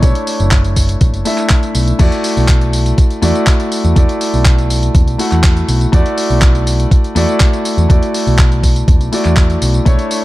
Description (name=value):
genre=nu-disco, nu disco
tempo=122 BPM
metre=4/4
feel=straight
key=unclear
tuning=A4 = 440 Hz
part: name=warm concert grand piano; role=accompaniment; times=0.0-10.2 s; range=A3 to F#5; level=-17 LUFS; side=equal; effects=sidechain pumping, dub echo
part: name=picked electric bass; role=bass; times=0.0-9.9 s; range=F#1 to E2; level=-14 LUFS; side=equal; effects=tube saturation, sidechain pumping
part: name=dusty soul sampler-style drum kit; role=drums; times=0.0-10.2 s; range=crash cymbal, handclaps, hi-hat, tambourine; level=-20 LUFS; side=equal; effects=small room ambience
part: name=electronic kick drum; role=drums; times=0.0-10.0 s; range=none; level=-10 LUFS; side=equal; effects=small room ambience
room=little or no reverb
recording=dark, warm production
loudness=-10 LUFS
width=side -17 dB against mid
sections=0.0-10.2 A section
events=none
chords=0.0 Bm11; 2.0 E9sus4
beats=| 0.03 0.52 1.01 1.50 | 2.00 2.49 2.98 3.47 | 3.96 4.46 4.95 5.44 | 5.93 6.42 6.92 7.41 | 7.90 8.39 8.88 9.37 | 9.87